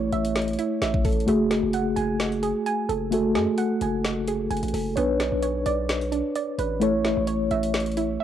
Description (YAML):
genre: hip hop, trap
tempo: 130 BPM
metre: 4/4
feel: half-time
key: F# minor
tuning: A4 = 440 Hz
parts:
  - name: mellow tine electric piano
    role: accompaniment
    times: 0.0-8.2 s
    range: A3 to C#5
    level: -24 LUFS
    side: left 1 dB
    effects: medium stereo tremolo, low-pass filter
  - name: hollow square pluck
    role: arpeggios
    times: 0.0-8.2 s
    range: A3 to G#5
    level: -29 LUFS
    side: right 8 dB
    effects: chorus, low-pass filter, analog delay
  - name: distorted 808-style bass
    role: bass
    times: 0.0-8.2 s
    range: F#1 to F#2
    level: -31 LUFS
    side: left 1 dB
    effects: distortion
  - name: trap drum kit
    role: drums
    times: 0.1-8.1 s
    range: hi-hat, kick drum, snare drum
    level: -29 LUFS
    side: left 1 dB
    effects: cassette tape
room: light reverb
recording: home recording on cassette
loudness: -22 LUFS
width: side -10 dB against mid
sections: 0.0-8.2 A section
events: none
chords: 0.0 A; 1.3 F#madd9; 5.0 Bmadd9; 6.8 A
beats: 0.35 0.81 | 1.28 1.74 2.20 2.66 | 3.12 3.58 4.04 4.51 | 4.97 5.43 5.89 6.35 | 6.82 7.28 7.74 8.20